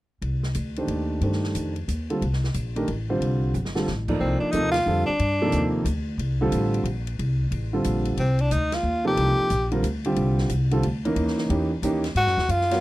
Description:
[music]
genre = modal jazz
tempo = 181 BPM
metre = 3/4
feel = swing 64% on 8ths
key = C dorian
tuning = A4 = 440 Hz
[part]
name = upright bass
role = bass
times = 0.2-12.8 s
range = G1 to G#2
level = -25 LUFS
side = equal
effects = none
[part]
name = open jazz drum kit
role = drums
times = 0.2-12.8 s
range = crash cymbal, hi-hat, kick drum, ride cymbal, snare drum, toms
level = -37 LUFS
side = left 1 dB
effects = none
[part]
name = warm concert grand piano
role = accompaniment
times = 0.8-12.8 s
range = C3 to D5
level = -25 LUFS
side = right 1 dB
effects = none
[part]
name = clear tenor saxophone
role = melody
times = 4.2-5.7, 8.2-9.7, 12.2-12.8 s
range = C4 to G4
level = -23 LUFS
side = equal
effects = none
[sound]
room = little or no reverb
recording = dry, close 1970s-style studio recording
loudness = -22 LUFS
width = side -17 dB against mid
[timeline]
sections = 0.2-4.2 A section; 4.2-12.2 B section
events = drum fill 3.5-3.9; band accent 4.7, 8.7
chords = 0.2 Cmadd9; 2.2 Fadd9; 4.2 Cm11; 6.2 Fadd9; 8.2 Cm11; 10.2 Fsus2/C; 11.2 Eb7b9; 12.2 G#m11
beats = | 0.22 0.55 0.88 | 1.22 1.55 1.88 | 2.21 2.54 2.87 | 3.20 3.54 3.87 | 4.20 4.53 4.86 | 5.19 5.53 5.86 | 6.19 6.52 6.85 | 7.18 7.51 7.85 | 8.18 8.51 8.84 | 9.17 9.51 9.84 | 10.17 10.50 10.83 | 11.16 11.50 11.83 | 12.16 12.49

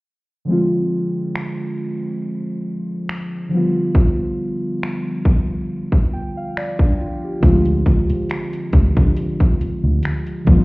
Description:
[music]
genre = contemporary R&B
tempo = 69 BPM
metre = 4/4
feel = swing 54% on 16ths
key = unclear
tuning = A4 = 440 Hz
[part]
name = muted felt-like synth keys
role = accompaniment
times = 0.5-10.6 s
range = D3 to G5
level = -20 LUFS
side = equal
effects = chorus
[part]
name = trap drum kit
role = drums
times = 1.4-10.6 s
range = finger snaps, hi-hat, kick drum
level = -15 LUFS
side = equal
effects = none
[part]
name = vintage muted fingered electric bass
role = bass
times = 7.4-10.6 s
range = D2 to D3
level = -18 LUFS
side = equal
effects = none
[sound]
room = little or no reverb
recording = heard muffled through a wall, stone room reverb, EQ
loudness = -17 LUFS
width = side -23 dB against mid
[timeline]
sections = 0.5-7.4 A section; 7.4-10.6 B section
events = synth keys fill 5.7-7.4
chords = 0.5 Dm7b5; 3.5 G7/D; 7.4 Dm7b5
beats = | 0.47 1.34 2.21 3.08 | 3.95 4.82 5.69 6.56 | 7.43 8.30 9.17 10.04

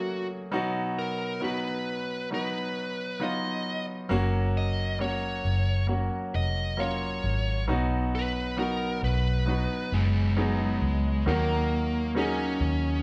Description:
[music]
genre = pop ballad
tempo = 67 BPM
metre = 4/4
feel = straight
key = unclear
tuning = A4 = 441 Hz
[part]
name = smooth overdriven lead guitar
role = melody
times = 0.0-13.0 s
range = Ab3 to Eb5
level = -34 LUFS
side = equal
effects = none
[part]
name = bright concert grand piano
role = accompaniment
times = 0.0-13.0 s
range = Cb3 to Bb4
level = -32 LUFS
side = equal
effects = none
[part]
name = vintage muted fingered electric bass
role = bass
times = 4.1-13.0 s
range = F1 to Eb2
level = -30 LUFS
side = equal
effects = none
[sound]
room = wet large studio reverb, RT60 1.1 s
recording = band playing live in one room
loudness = -28 LUFS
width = mono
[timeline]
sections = 0.0-11.3 A section; 11.3-13.0 B section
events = none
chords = 0.0 Gb; 0.5 Cb; 4.1 Gb; 7.7 Cb; 11.3 Ebm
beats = | 0.52 1.42 2.31 3.21 | 4.10 5.00 5.89 6.79 | 7.68 8.58 9.47 10.37 | 11.27 12.16

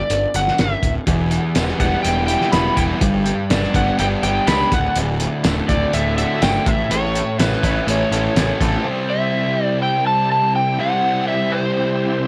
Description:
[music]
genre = classic rock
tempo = 123 BPM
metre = 4/4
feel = straight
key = unclear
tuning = A4 = 441 Hz
[part]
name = overdriven slide guitar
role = melody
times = 0.0-12.3 s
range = B4 to B5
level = -23 LUFS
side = equal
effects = tape echo
[part]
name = fuzz picked electric bass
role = bass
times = 0.1-8.8 s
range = D1 to C#2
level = -25 LUFS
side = equal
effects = overdrive
[part]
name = cloth-damped thuddy drum kit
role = drums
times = 0.1-8.7 s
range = hi-hat, kick drum, snare drum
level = -24 LUFS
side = equal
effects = none
[part]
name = bright tonewheel organ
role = sustained chords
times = 1.1-12.3 s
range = A3 to D5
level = -33 LUFS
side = equal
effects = none
[part]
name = overdriven semi-hollow guitar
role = riff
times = 1.1-8.9 s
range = D2 to A4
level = -27 LUFS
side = equal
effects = none
[part]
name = sludgy distorted guitar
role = riff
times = 1.1-12.3 s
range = D2 to C5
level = -24 LUFS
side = equal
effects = overdrive
[part]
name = tambourine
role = percussion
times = 1.6-8.5 s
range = none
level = -38 LUFS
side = equal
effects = none
[sound]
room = light reverb, small room ambience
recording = faint mains hum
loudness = -18 LUFS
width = mono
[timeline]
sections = 0.0-8.9 A section; 8.9-12.3 B section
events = none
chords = 0.0 G5; 1.1 Em; 3.0 G; 4.7 D; 6.7 A; 8.9 C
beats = 0.10 0.59 | 1.07 1.56 2.05 2.54 | 3.02 3.51 3.99 4.48 | 4.97 5.45 5.94 6.43 | 6.91 7.40 7.88 8.37 | 8.86 9.34 9.82 10.31 | 10.79 11.28 11.76 12.24

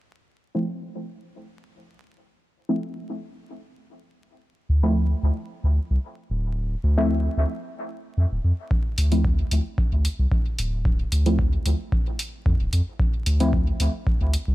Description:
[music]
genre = dub techno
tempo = 112 BPM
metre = 4/4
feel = straight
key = D minor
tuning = A4 = 439 Hz
[part]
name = deep mellow chord stab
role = stabs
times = 0.5-13.5 s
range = F3 to E4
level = -27 LUFS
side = equal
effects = chorus, phaser, sidechain pumping, dub echo
[part]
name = soft dub sub bass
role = bass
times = 4.7-14.5 s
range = D1 to F2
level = -21 LUFS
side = equal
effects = sidechain pumping
[part]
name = electronic kick drum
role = drums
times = 8.7-14.2 s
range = none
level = -23 LUFS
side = equal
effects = studio reverb
[part]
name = electronic hi-hat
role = drums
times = 9.0-14.4 s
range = none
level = -30 LUFS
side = equal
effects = overdrive, studio reverb
[sound]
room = little or no reverb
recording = echo-heavy mix, vinyl crackle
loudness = -21 LUFS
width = side -17 dB against mid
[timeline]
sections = 0.1-8.7 A section; 8.7-14.5 B section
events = filter sweep on synth stab 0.1-8.7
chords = 0.1 Dm7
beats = | 0.14 0.68 1.21 1.75 | 2.28 2.82 3.35 3.89 | 4.42 4.96 5.50 6.03 | 6.57 7.10 7.64 8.18 | 8.71 9.25 9.78 10.32 | 10.85 11.39 11.93 12.46 | 13.00 13.53 14.07

